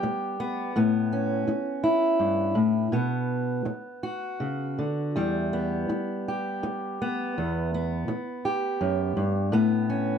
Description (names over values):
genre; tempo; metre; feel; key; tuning
folk, solo fingerstyle acoustic guitar; 83 BPM; 3/4; rubato; E dorian; A4 = 441 Hz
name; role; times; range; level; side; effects
fingerpicked steel-string acoustic guitar; solo; 0.0-10.2 s; E2 to G4; -24 LUFS; equal; none
room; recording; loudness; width
moderate studio reverb, RT60 0.6 s; dark, warm production; -24 LUFS; side -7 dB against mid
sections
0.0-10.2 A section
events
none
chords
0.0 Em (rootless); 0.7 Aadd9; 2.9 Bm; 5.1 Em; 9.5 Aadd9